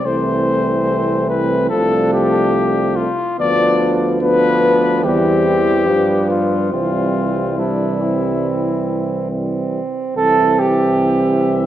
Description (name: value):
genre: classical, brass quintet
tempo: 72 BPM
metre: 4/4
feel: rubato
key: C major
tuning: A4 = 440 Hz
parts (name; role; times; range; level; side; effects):
- dark trumpet; melody; 0.0-11.7 s; E4 to E5; -19 LUFS; left 4 dB; none
- clear trombone; accompaniment; 0.0-11.7 s; E3 to F3; -22 LUFS; right 1 dB; none
- mellow flugelhorn; second line; 0.1-11.7 s; B3 to A4; -21 LUFS; right 4 dB; none
- mellow French horn; accompaniment; 0.1-11.7 s; G3 to C4; -21 LUFS; left 2 dB; none
- clear tuba; bass; 0.1-11.7 s; C2 to G2; -21 LUFS; right 3 dB; none
room: moderate scoring stage reverb, RT60 1.6 s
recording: worn, warbling old tape, cassette tape, warbly pitch drift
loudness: -14 LUFS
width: side -12 dB against mid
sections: 0.0-10.2 A section; 10.2-11.7 A section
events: none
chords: 0.1 Am/C; 1.7 Dm/C; 3.4 Bdim/D; 5.0 C/E; 5.9 G7; 6.7 C